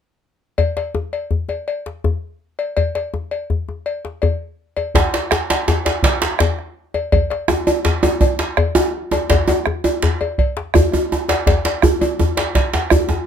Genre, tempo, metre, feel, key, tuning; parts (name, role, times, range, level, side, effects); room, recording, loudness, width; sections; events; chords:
west african traditional, West African drum ensemble; 110 BPM (dotted quarters); 12/8; straight
cowbell; percussion; 0.6-13.1 s; -22 LUFS; left 5 dB
djembe; percussion; 0.6-13.3 s; -20 LUFS; left 3 dB
bombo; percussion; 4.9-13.1 s; -19 LUFS; right 3 dB
djembe; percussion; 5.0-13.3 s; -17 LUFS; right 2 dB
light reverb; -16 LUFS; side -8 dB against mid
0.6-4.9 A section; 4.9-13.3 B section
drum fill 12.7-13.3